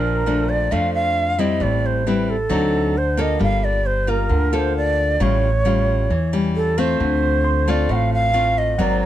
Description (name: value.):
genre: bossa nova.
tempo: 134 BPM.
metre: 4/4.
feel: straight.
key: unclear.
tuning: A4 = 439 Hz.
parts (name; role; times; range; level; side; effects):
bright reedy shakuhachi; melody; 0.0-9.1 s; A4 to Gb5; -21 LUFS; right 2 dB; none.
nylon-string guitar; accompaniment; 0.0-9.1 s; F2 to A4; -21 LUFS; left 2 dB; none.
upright bass; bass; 0.0-9.1 s; G1 to F2; -22 LUFS; equal; none.
tine electric piano; accompaniment; 7.4-9.1 s; Gb5 to C6; -31 LUFS; right 5 dB; medium stereo tremolo.
room: light reverb.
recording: dark, warm production.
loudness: -17 LUFS.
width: side -12 dB against mid.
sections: 0.0-9.1 A section.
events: none.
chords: 0.0 Bbmaj7; 1.6 Am7; 2.5 D7b9; 3.4 Gm9; 5.2 A7b13; 7.0 Dm7.